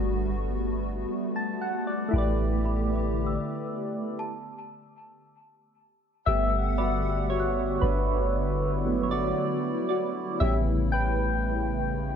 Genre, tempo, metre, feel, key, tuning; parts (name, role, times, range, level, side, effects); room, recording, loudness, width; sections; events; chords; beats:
contemporary R&B; 58 BPM; 4/4; straight; A4 = 440 Hz
soft electric-piano-like synth keys; accompaniment; 0.0-12.2 s; F#3 to A5; -28 LUFS; equal; chorus, phaser
hollow soft pad; sustained chords; 0.0-12.2 s; C#3 to F#5; -32 LUFS; left 1 dB; ensemble chorus
soft 808-style bass; bass; 0.0-12.2 s; G1 to A1; -28 LUFS; equal
small celesta; texture; 2.7-9.2 s; A5 to F#6; -41 LUFS; left 1 dB; stereo widening, dub echo
light reverb, small room ambience; echo-heavy mix; -25 LUFS; side -8 dB against mid
0.0-6.3 A section; 6.3-12.2 B section
stop 4.2-6.3; synth keys solo 6.3-12.2
0.0 Gmaj9; 2.1 A9sus4; 6.3 Gmaj7; 10.4 A7
0.06 1.10 | 2.13 3.17 4.20 5.24 | 6.27 7.30 8.34 9.37 | 10.41 11.44